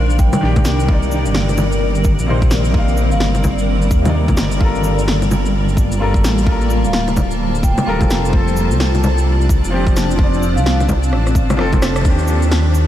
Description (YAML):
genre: future garage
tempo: 129 BPM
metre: 4/4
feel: swing 61% on 16ths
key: G minor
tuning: A4 = 440 Hz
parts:
  - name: clear upright piano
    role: accompaniment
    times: 0.0-12.9 s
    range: C3 to F5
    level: -23 LUFS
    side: left 2 dB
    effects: sidechain pumping, diffuse ambient delay
  - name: granular cloud pad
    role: sustained chords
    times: 0.0-12.9 s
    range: Eb3 to A5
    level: -20 LUFS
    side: equal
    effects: built-in reverb, wide subtle chorus, sidechain pumping
  - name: dark detuned saw bass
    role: bass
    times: 0.0-12.9 s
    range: D1 to Eb2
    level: -17 LUFS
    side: equal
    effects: sidechain pumping
  - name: electronic shaker, cabasa, bongos, snare drum and rim click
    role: drums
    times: 0.1-12.9 s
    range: none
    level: -22 LUFS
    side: equal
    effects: overdrive, small room ambience
  - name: vibraphone with soft mallets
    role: melody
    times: 0.2-3.4, 6.8-10.8 s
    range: F5 to G5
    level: -29 LUFS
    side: equal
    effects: tape echo
  - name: electronic kick drum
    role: drums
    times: 0.2-12.2 s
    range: none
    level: -15 LUFS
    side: equal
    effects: overdrive, small room ambience
  - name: backwards swelling texture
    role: texture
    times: 12.0-12.9 s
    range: none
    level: barely audible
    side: none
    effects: none
room: light reverb, digital ambience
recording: vinyl crackle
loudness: -13 LUFS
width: side -12 dB against mid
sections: 0.0-12.1 A section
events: drum fill 11.1-12.1; band accent 11.9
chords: 0.0 Ebmaj7; 0.9 Cm9; 4.6 Gm9; 8.3 Dm7/F; 12.1 Ebmaj7